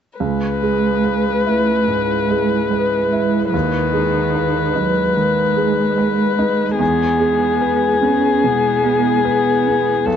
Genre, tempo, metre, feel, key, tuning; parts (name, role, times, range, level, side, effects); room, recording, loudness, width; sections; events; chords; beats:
neoclassical piano and strings; 73 BPM; 4/4; rubato; C# minor; A4 = 440 Hz
muted violin; melody; 0.2-10.2 s; G#4 to B4; -18 LUFS; left 6 dB
muted cello; second line; 0.2-10.2 s; D#3 to C#4; -21 LUFS; right 4 dB
clear baby grand piano; accompaniment; 0.2-10.2 s; B1 to B4; -20 LUFS; right 4 dB
deep dark ambient pad; sustained chords; 0.9-10.2 s; G#3 to B4; -28 LUFS; left 4 dB; chorus, built-in reverb
little or no reverb; nothing above 7.9 kHz; -14 LUFS; side -8 dB against mid
0.2-10.2 A section
0.2 C#m7; 3.5 G#m/D#; 6.8 E
| 0.20 1.03 1.88 2.71 | 3.53 4.35 5.17 5.98 | 6.80 7.62 8.44 9.26 | 10.07